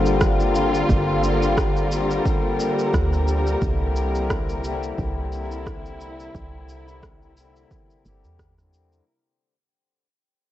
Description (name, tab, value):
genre	organic downtempo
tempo	88 BPM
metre	4/4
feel	swing 56% on 16ths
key	unclear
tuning	A4 = 440 Hz
part	pedal harmonium	accompaniment	0.0-9.0 s	D3 to G4	-26 LUFS	left 8 dB	sidechain pumping, cassette tape, tape echo, plate reverb
part	warm studio string section	sustained chords	0.0-9.1 s	C3 to Bb4	-25 LUFS	right 1 dB	sidechain pumping, low-pass filter, cassette tape, plate reverb
part	woody FM bass	bass	0.0-9.0 s	G1 to E2	-26 LUFS	right 1 dB	sidechain pumping
part	electronic shaker and rim click	drums	0.1-9.0 s	none	-29 LUFS	right 1 dB	cassette tape
part	electronic kick drum	drums	0.2-8.5 s	none	-24 LUFS	right 1 dB	cassette tape
room	moderate studio reverb, RT60 0.6 s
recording	home recording on cassette, nothing above 7.9 kHz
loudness	-19 LUFS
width	side -13 dB against mid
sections	0.0-9.1 A section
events	fade-out 0.0-9.1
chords	0.0 Gm7; 3.6 C7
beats	0.21 | 0.89 1.57 2.26 2.94 | 3.62 4.30 4.98 5.67 | 6.35 7.03 7.71 8.39